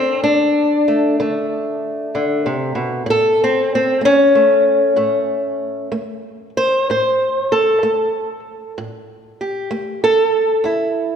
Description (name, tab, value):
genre	acoustic country blues, solo or duo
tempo	63 BPM (dotted quarters)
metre	12/8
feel	straight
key	unclear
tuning	A4 = 442 Hz
part	fingerpicked old ladder-braced acoustic guitar	solo	0.0-11.2 s	E2 to C5	-15 LUFS	equal	none
room	moderate concert hall reverb, RT60 2.2 s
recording	recorded in a church or concert hall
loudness	-14 LUFS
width	side -7 dB against mid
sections	0.0-11.2 A section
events	steel-string acoustic guitar solo 0.0-11.2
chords	0.0 D5; 3.1 A; 10.7 N.C.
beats	0.23 1.19 2.14 | 3.09 4.04 4.99 5.93 | 6.88 7.82 8.77 9.71 | 10.65